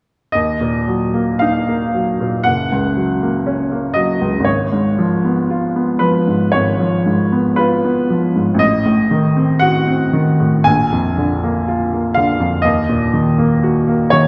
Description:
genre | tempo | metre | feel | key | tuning
classical, romantic nocturne for solo piano | 59 BPM | 4/4 | uneven beats, rubato | Eb minor | A4 = 439 Hz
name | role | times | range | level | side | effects
clear upright piano | solo | 0.3-14.3 s | Gb1 to Ab5 | -16 LUFS | equal | none
room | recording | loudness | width
wet scoring stage reverb, RT60 1.5 s | recorded in a church or concert hall | -16 LUFS | mono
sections
0.3-14.3 A section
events
none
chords
0.3 Ebm; 2.4 Gb; 4.5 Fdim/Ab; 8.6 Adim7; 10.7 Bb7; 12.6 Ebm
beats
| 0.34 1.41 2.45 3.46 | 4.47 5.50 6.54 7.59 | 8.62 9.61 10.65 11.67 | 12.64 13.63

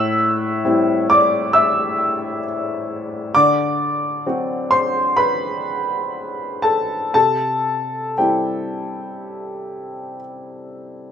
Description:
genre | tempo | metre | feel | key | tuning
neoclassical minimalist piano | 57-68 BPM | 4/4 | rubato | unclear | A4 = 440 Hz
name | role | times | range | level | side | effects
clear upright piano | solo | 0.0-11.1 s | A2 to E6 | -17 LUFS | left 1 dB | none
room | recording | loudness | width
moderate studio reverb, RT60 0.5 s | band playing live in one room | -16 LUFS | side -8 dB against mid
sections
0.0-11.1 A section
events
none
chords
0.0 Am7; 3.3 D7; 7.1 C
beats
0.64 1.53 2.43 | 3.34 4.25 5.17 6.12 | 7.14 8.16 9.18 10.19

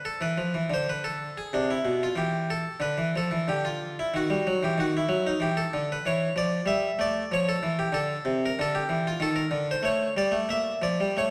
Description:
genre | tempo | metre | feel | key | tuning
classical, baroque-style suite movement for harpsichord | 93 BPM | 3/4 | rubato | unclear | A4 = 440 Hz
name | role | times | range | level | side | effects
harpsichord | solo | 0.0-11.3 s | B2 to E5 | -27 LUFS | equal | none
room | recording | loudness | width
wet scoring stage reverb, RT60 1.7 s | dark, warm production, tape saturation | -27 LUFS | mono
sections
0.0-11.3 A section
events
none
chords
0.2 Dm69; 1.5 Dm13; 2.2 Dm69; 4.1 D#m; 5.4 G69; 6.0 A5/E; 8.0 C69; 9.2 Eb5; 9.9 A7; 10.5 Bb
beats
| 0.22 0.87 1.52 | 2.17 2.81 3.46 | 4.12 4.76 5.40 | 6.04 6.67 7.31 | 7.95 8.58 9.21 | 9.86 10.50 11.16

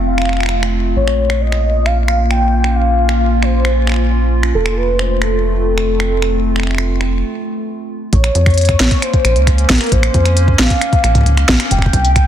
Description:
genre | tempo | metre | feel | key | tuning
IDM | 134 BPM | 4/4 | straight | unclear | A4 = 439 Hz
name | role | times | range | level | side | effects
warbly tape-like pad | sustained chords | 0.0-12.3 s | A3 to F4 | -21 LUFS | equal | chorus, built-in reverb
rubbery square bass | bass | 0.0-12.3 s | F1 to F2 | -14 LUFS | equal | tube saturation
warm velvety synth lead | melody | 0.1-12.3 s | A4 to G5 | -19 LUFS | left 1 dB | chorus, vintage 12-bit sampler grit, tape echo
glitchy drum kit | drums | 0.2-12.2 s | finger snaps, hi-hat, snare drum | -19 LUFS | equal | soft clipping on snare, ping-pong delay
electronic kick drum | drums | 8.1-12.2 s | none | -15 LUFS | equal | overdrive
room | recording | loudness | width
light reverb, digital ambience | dense, heavily limited modern master | -12 LUFS | side -10 dB against mid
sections
0.0-8.1 A section; 8.1-12.3 B section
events
break 7.2-8.1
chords
0.0 F; 1.0 Bbmadd9; 4.5 F; 8.1 Bbmadd9; 11.7 F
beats
0.07 0.52 | 0.96 1.41 1.86 2.31 | 2.75 3.20 3.65 4.10 | 4.55 4.99 5.44 5.89 | 6.34 6.79 7.23 7.68 | 8.13 8.58 9.02 9.47 | 9.92 10.37 10.81 11.26 | 11.71 12.16

